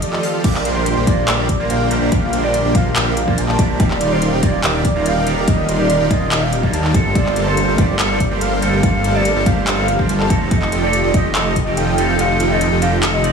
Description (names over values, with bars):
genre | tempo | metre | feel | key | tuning
future bass | 143 BPM | 4/4 | half-time | G minor | A4 = 440 Hz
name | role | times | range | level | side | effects
warm velvety synth lead | melody | 0.0-13.3 s | C5 to A5 | -22 LUFS | right 1 dB | chorus, sidechain pumping, digital delay
airy breathy pad | sustained chords | 0.1-13.3 s | D3 to G4 | -28 LUFS | equal | none
supersaw chords | riff | 0.0-13.2 s | F3 to C6 | -21 LUFS | right 1 dB | sidechain pumping
trap drum kit | drums | 0.0-13.3 s | crash cymbal, handclaps, hi-hat | -22 LUFS | left 1 dB | studio reverb
clean electric guitar | accompaniment | 0.4-13.3 s | Eb3 to D5 | -23 LUFS | right 3 dB | sidechain pumping
wide detuned saw bass | bass | 0.4-13.3 s | Eb1 to Eb2 | -20 LUFS | equal | chorus, sidechain pumping
electronic kick drum | drums | 0.4-11.6 s | none | -17 LUFS | equal | overdrive, studio reverb
room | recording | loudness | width
light reverb | studio ambience | -14 LUFS | side -6 dB against mid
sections
0.0-13.3 A section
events
break 0.0-0.4; kick drops out 12.2-13.3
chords
0.4 Bb6; 3.8 Ebmaj7; 6.9 Gm11; 10.3 F7